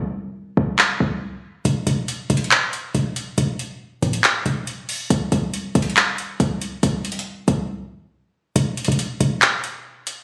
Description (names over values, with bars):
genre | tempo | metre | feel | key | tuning
hip hop, trap | 139 BPM | 4/4 | half-time | unclear | A4 = 440 Hz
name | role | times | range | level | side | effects
short 808-style bass | bass | 0.0-10.2 s | D1 to C2 | -24 LUFS | equal | none
booming analog drum machine | drums | 0.8-10.2 s | handclaps, hi-hat | -22 LUFS | equal | overdrive
room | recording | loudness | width
light reverb | recorded on a phone in the room, studio reverb | -21 LUFS | mono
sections
0.0-8.6 A section; 8.6-10.2 B section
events
break 0.0-1.7, 7.7-8.6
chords
none